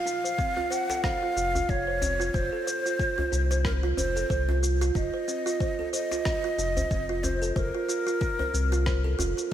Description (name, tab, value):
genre	organic downtempo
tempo	92 BPM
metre	4/4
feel	swing 56% on 16ths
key	F phrygian dominant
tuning	A4 = 443 Hz
part	breathy ney	melody	0.0-9.2 s	Bb4 to Gb5	-29 LUFS	equal	ping-pong delay
part	kalimba	arpeggios	0.0-9.5 s	C4 to C5	-31 LUFS	right 3 dB	low-pass filter, ping-pong delay
part	electronic shaker and rim click	drums	0.1-9.5 s	none	-36 LUFS	left 2 dB	overdrive
part	electronic kick drum	drums	0.4-9.0 s	none	-30 LUFS	left 1 dB	overdrive
part	djembe	percussion	0.6-9.5 s	none	-36 LUFS	left 2 dB	none
part	warm sub bass	bass	1.4-9.3 s	F1 to C2	-28 LUFS	left 1 dB	none
room	moderate lush hall reverb, RT60 2.9 s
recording	bright 1980s-style digital production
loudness	-24 LUFS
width	side -11 dB against mid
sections	0.0-9.5 A section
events	none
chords	0.0 F5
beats	0.39 1.04 1.69 | 2.34 3.00 3.65 4.30 | 4.95 5.60 6.26 6.91 | 7.56 8.21 8.87